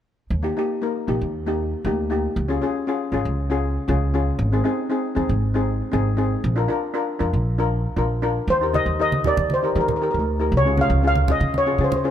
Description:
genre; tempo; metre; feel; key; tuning
calypso; 118 BPM; 4/4; straight; Eb major; A4 = 440 Hz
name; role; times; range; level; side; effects
upright bass; bass; 0.3-12.1 s; Ab1 to Eb3; -22 LUFS; right 1 dB; none
steel pan; accompaniment; 0.4-12.1 s; Bb3 to Bb4; -24 LUFS; left 2 dB; none
steel pan; melody; 8.5-12.1 s; Bb4 to F5; -21 LUFS; equal; none
congas; percussion; 8.7-12.0 s; none; -26 LUFS; right 3 dB; none
room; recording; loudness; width
light reverb; none; -19 LUFS; side -10 dB against mid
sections
0.3-8.5 A section; 8.5-12.1 B section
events
none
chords
0.3 Eb; 2.4 Db; 4.4 Ab; 6.4 Bb; 8.5 Eb; 10.5 Db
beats
| 0.31 0.82 1.33 1.85 | 2.36 2.87 3.38 3.89 | 4.40 4.91 5.42 5.93 | 6.44 6.95 7.46 7.97 | 8.48 8.99 9.51 10.01 | 10.52 11.03 11.54 12.05

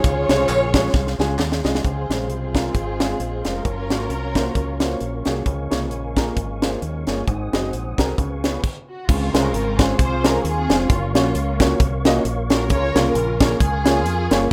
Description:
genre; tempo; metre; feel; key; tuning
uptempo gospel; 133 BPM; 4/4; swing 56% on 8ths; Db major; A4 = 440 Hz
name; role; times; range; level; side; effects
warm studio string section; melody; 0.0-5.3, 8.9-14.5 s; Ab3 to Db5; -27 LUFS; equal; slapback echo
warm upright piano; accompaniment; 0.0-14.5 s; Ab2 to Eb5; -27 LUFS; equal; none
mellow tonewheel organ; sustained chords; 0.0-14.5 s; C4 to Eb6; -33 LUFS; equal; fast rotary speaker, chorus vibrato
deep dub fingered electric bass; bass; 0.0-14.5 s; F1 to F2; -27 LUFS; equal; none
crisp fusion drum kit; drums; 0.0-14.4 s; crash cymbal, hi-hat, kick drum, snare drum; -22 LUFS; equal; none
tambourine and handclaps; percussion; 0.0-1.7 s; none; -36 LUFS; equal; none
clear French horn section; sustained chords; 1.8-8.6 s; F3 to F4; -36 LUFS; equal; none
room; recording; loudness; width
light reverb, small room ambience; rough home demo mix; -20 LUFS; mono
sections
0.0-1.8 A section; 1.8-9.1 B section; 9.1-14.5 A section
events
drum fill 0.9-1.8; stop 8.6-9.1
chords
0.0 Dbmaj7; 3.7 Gbmaj7; 5.5 Db6; 7.3 Ab7; 8.2 Db7; 9.1 Dbmaj7; 10.9 Gbmaj7; 12.7 Db6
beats
| 0.04 0.49 0.94 1.39 | 1.84 2.29 2.75 3.20 | 3.65 4.10 4.56 5.01 | 5.46 5.92 6.37 6.82 | 7.28 7.73 8.18 8.63 | 9.09 9.54 9.99 10.44 | 10.89 11.35 11.80 12.25 | 12.70 13.15 13.61 14.06 | 14.51

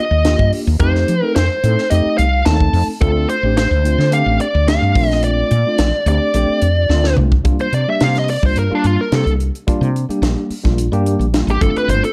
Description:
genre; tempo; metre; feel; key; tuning
electric jazz fusion; 108 BPM; 4/4; straight; C dorian; A4 = 440 Hz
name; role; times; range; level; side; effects
bluesy overdriven lead guitar; melody; 0.0-12.1 s; D4 to A5; -21 LUFS; equal; distortion, slapback echo
tine electric piano; accompaniment; 0.0-12.1 s; G3 to A4; -23 LUFS; equal; subtle chorus, plate reverb
woody fretless electric bass; bass; 0.1-12.0 s; G1 to F3; -18 LUFS; equal; none
crisp fusion drum kit; drums; 0.2-12.1 s; hi-hat, kick drum, snare drum, toms; -22 LUFS; equal; none
room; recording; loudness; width
light reverb; dark, warm production; -16 LUFS; mono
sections
0.0-7.5 A section; 7.5-12.1 B section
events
drum fill 6.9-7.5; lead electric guitar solo 7.5-12.1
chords
0.0 Ebmaj7; 0.8 F7; 3.0 Dm7; 5.0 Bbmaj7; 7.5 C9sus4; 11.6 G9sus4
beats
0.25 | 0.80 1.35 1.91 2.46 | 3.02 3.57 4.12 4.68 | 5.23 5.79 6.34 6.89 | 7.45 8.00 8.56 9.11 | 9.67 10.22 10.78 11.33 | 11.89

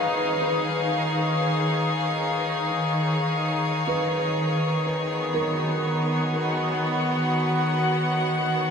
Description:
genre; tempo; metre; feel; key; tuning
ambient; free time; none; none; unclear; A4 = 443 Hz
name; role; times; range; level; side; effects
rich chamber string section; sustained chords; 0.0-8.7 s; Eb3 to F#5; -22 LUFS; left 1 dB; shimmer reverb
felt-muted upright piano; arpeggios; 0.0-8.7 s; Bb4 to F5; -31 LUFS; equal; ping-pong delay, shimmer reverb
room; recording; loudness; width
wet huge ambient reverb, RT60 8.9 s; none; -22 LUFS; side -6 dB against mid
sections
0.0-8.7 A section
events
none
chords
0.0 Db/Eb; 4.8 Badd9/D#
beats
free time

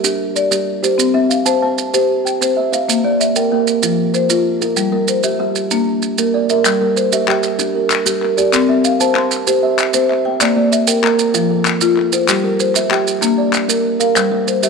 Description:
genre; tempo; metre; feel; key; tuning
southern african traditional, mbira-style interlocking cycle; 128 BPM (dotted quarters); 12/8; straight; G dorian; A4 = 435 Hz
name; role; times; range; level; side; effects
kalimba; arpeggios; 0.0-14.7 s; F3 to A5; -17 LUFS; right 9 dB; none
marimba with soft mallets; arpeggios; 0.0-14.7 s; F3 to C6; -16 LUFS; left 7 dB; none
maracas; percussion; 0.0-14.7 s; none; -20 LUFS; right 10 dB; none
group handclap; percussion; 6.7-14.3 s; none; -20 LUFS; left 9 dB; none
room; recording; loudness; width
wet echo chamber reverb, RT60 1.7 s; 1960s-style stereo with parts hard left and right; -13 LUFS; side -4 dB against mid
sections
0.0-6.7 A section; 6.7-14.7 B section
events
none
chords
0.0 G5; 1.0 C; 2.9 Bb; 3.8 F5; 4.8 Gm; 5.7 Bb; 6.7 Gm; 8.5 C; 10.4 Bb; 11.3 F; 12.3 Gm; 13.2 Bb; 14.2 Gm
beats
0.05 0.52 | 0.99 1.47 1.94 2.41 | 2.88 3.35 3.83 4.30 | 4.77 5.24 5.71 6.18 | 6.65 7.12 7.59 8.06 | 8.53 9.00 9.47 9.94 | 10.41 10.88 11.35 11.82 | 12.29 12.75 13.22 13.69 | 14.16 14.63

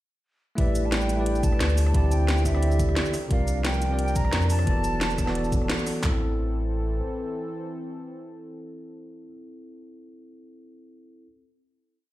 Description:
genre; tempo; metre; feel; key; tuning
liquid drum and bass; 176 BPM; 4/4; straight; A minor; A4 = 440 Hz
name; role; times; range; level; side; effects
breathy concert flute; melody; 0.6-5.7 s; E5 to Bb5; -33 LUFS; right 1 dB; dub echo
bell-like tine electric piano; accompaniment; 0.6-11.3 s; C3 to D5; -30 LUFS; equal; dub echo
warm analog pad; sustained chords; 0.6-9.2 s; E3 to B4; -36 LUFS; left 1 dB; chorus, sidechain pumping
warm sub bass; bass; 0.6-7.0 s; E1 to F2; -25 LUFS; equal; none
garage drum kit; drums; 0.6-6.1 s; handclaps, kick drum; -25 LUFS; equal; studio reverb
garage drum kit; drums; 0.6-5.9 s; hi-hat, rim click, shaker, snare drum; -30 LUFS; equal; studio reverb
room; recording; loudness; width
light reverb, digital ambience; played on a big sound system in a bare room, large studio reverb; -22 LUFS; side -15 dB against mid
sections
0.6-6.0 drop; 6.0-8.8 final chord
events
drop 0.6-6.0; band accent 5.7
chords
0.6 A9sus4; 1.9 D9sus4; 3.1 C9sus4; 4.7 E9sus4; 6.0 Am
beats
| 0.58 0.92 1.26 1.60 | 1.95 2.29 2.63 2.97 | 3.31 3.65 3.99 4.33 | 4.67 5.01 5.35 5.70 | 6.04 6.38 6.72 7.06 | 7.40 7.74 8.08 8.42

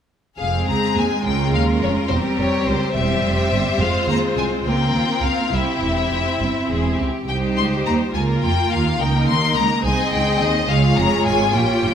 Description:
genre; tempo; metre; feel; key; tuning
quick classical-period movement for string orchestra; 70 BPM (dotted quarters); 6/8; rubato; unclear; A4 = 440 Hz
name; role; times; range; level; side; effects
rich studio violin section; melody; 0.4-11.9 s; C5 to C6; -22 LUFS; left 6 dB; none
clear studio violin section; second line; 0.4-11.9 s; E4 to Eb5; -25 LUFS; left 1 dB; none
rich studio viola section; accompaniment; 0.4-11.9 s; G3 to F4; -22 LUFS; right 1 dB; none
clear studio cello section; bass; 0.4-11.9 s; C2 to Bb2; -24 LUFS; right 2 dB; none
rich studio double bass section; bass; 0.4-11.9 s; E1 to Eb2; -24 LUFS; right 2 dB; none
room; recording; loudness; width
wet recital hall reverb, RT60 1.4 s; none; -17 LUFS; side -8 dB against mid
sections
0.4-11.9 A section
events
none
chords
0.4 Fm; 1.3 Db; 2.1 C/E; 3.8 Fm; 4.6 Bbm/Db; 5.5 C; 7.3 Cm; 8.1 Bbm; 9.0 Eb5/Db; 9.8 Ab/C; 10.7 Bbm7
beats
| 0.39 1.25 | 2.11 2.95 | 3.80 4.65 | 5.52 6.40 | 7.29 8.15 | 9.00 9.84 | 10.69 11.54

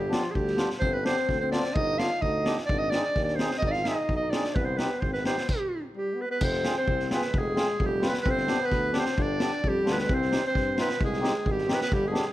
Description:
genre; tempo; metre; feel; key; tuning
klezmer; 130 BPM; 2/4; straight; G phrygian dominant; A4 = 440 Hz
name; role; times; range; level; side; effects
breathy clarinet; melody; 0.0-12.3 s; F4 to F5; -28 LUFS; right 2 dB; none
clear trombone; second line; 0.0-12.3 s; F3 to F4; -33 LUFS; left 4 dB; none
warm tuba; bass; 0.0-12.2 s; F1 to G2; -33 LUFS; equal; none
mellow accordion; accompaniment; 0.1-12.3 s; B3 to B4; -33 LUFS; left 1 dB; none
street-band drum kit; drums; 0.1-12.3 s; crash cymbal, kick drum, snare drum; -30 LUFS; equal; none
room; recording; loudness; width
light reverb; none; -24 LUFS; side -15 dB against mid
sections
0.0-6.4 A section; 6.4-12.3 B section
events
stop 5.5-6.4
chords
0.0 G; 2.7 Ab; 4.5 Cm; 5.5 N.C.; 6.4 Fm; 8.2 G; 10.1 Cm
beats
0.35 | 0.82 1.29 | 1.75 2.22 | 2.69 3.15 | 3.62 4.08 | 4.55 5.01 | 5.47 5.94 | 6.40 6.86 | 7.32 7.79 | 8.25 8.71 | 9.17 9.62 | 10.08 10.54 | 11.00 11.46 | 11.91

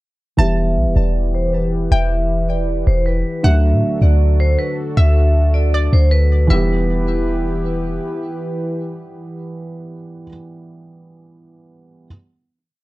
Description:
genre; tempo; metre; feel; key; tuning
hip hop, trap; 157 BPM; 4/4; half-time; E minor; A4 = 442 Hz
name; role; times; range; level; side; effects
vibraphone with hard mallets; melody; 0.4-7.6 s; B4 to E5; -24 LUFS; right 1 dB; low-pass filter, ping-pong delay
hollow square pluck; second line; 0.4-7.6 s; D5 to A5; -28 LUFS; left 2 dB; chorus, ping-pong delay
felt-muted upright piano; accompaniment; 0.4-12.1 s; D3 to G4; -25 LUFS; right 3 dB; low-pass filter
warm analog pad; sustained chords; 0.4-10.3 s; D3 to B4; -25 LUFS; left 1 dB; chorus, low-pass filter
clean 808-style bass; bass; 0.4-8.0 s; E1 to A2; -15 LUFS; equal; none
room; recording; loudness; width
little or no reverb; dark, warm production; -14 LUFS; side -19 dB against mid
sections
0.4-6.5 breakdown; 6.5-9.6 final chord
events
filter sweep 0.4-6.5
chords
0.4 Em; 3.4 D; 6.5 Em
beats
| 0.39 0.77 1.15 1.53 | 1.91 2.30 2.68 3.06 | 3.44 3.83 4.21 4.59 | 4.97 5.35 5.74 6.12 | 6.50 6.88 7.26 7.65 | 8.03 8.41 8.79 9.18

